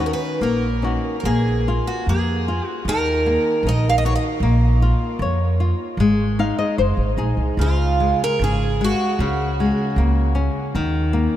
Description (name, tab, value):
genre	fado-style ballad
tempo	76 BPM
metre	2/4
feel	rubato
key	Bb minor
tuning	A4 = 440 Hz
part	picked twelve-string acoustic guitar	melody	0.0-4.2, 7.6-10.3 s	F4 to F5	-24 LUFS	right 2 dB	none
part	flamenco guitar	accompaniment	0.0-11.4 s	Db3 to F5	-22 LUFS	left 2 dB	none
part	upright bass	bass	0.0-11.3 s	Gb1 to F2	-20 LUFS	right 1 dB	none
room	moderate huge ambient reverb, RT60 7.6 s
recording	in a vast, echoing space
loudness	-17 LUFS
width	side -12 dB against mid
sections	0.0-1.2 A section; 1.2-11.4 B section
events	nylon-string guitar fill 6.0-7.6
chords	0.0 Ebm7; 1.2 Bb5; 2.9 Ebm; 4.4 Bbm; 6.0 Ab; 7.6 Db5; 9.2 Gbadd9/Db; 10.8 Eb5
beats	0.40 | 1.24 2.07 | 2.86 3.63 | 4.41 5.19 | 5.98 6.78 | 7.59 8.41 | 9.20 9.98 | 10.76